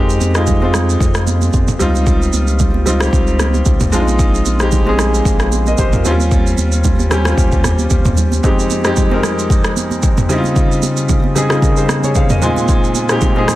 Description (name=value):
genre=amapiano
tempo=113 BPM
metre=4/4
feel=swing 55% on 16ths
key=F minor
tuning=A4 = 440 Hz
part: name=warm concert grand piano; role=accompaniment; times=0.0-13.6 s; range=F2 to Ab5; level=-16 LUFS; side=left 1 dB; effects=none
part: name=saturated sub bass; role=bass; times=0.0-8.4 s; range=Bb1 to F2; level=-16 LUFS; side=equal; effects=none
part: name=deep house drum kit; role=drums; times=0.1-13.6 s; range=kick drum, rim click, shaker, toms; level=-15 LUFS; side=equal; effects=soft clipping on snare
part: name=congas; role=percussion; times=0.2-13.6 s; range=none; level=-24 LUFS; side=right 6 dB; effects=none
room=little or no reverb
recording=dense, heavily limited modern master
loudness=-12 LUFS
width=side -16 dB against mid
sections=0.0-13.6 A section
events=grand piano fill 11.9-12.7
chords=0.0 Fm7; 1.8 Dbmaj9#11; 3.9 Bb7sus4; 6.0 Eb13; 8.4 Fm7; 10.3 Dbmaj9#11; 12.4 Bb7sus4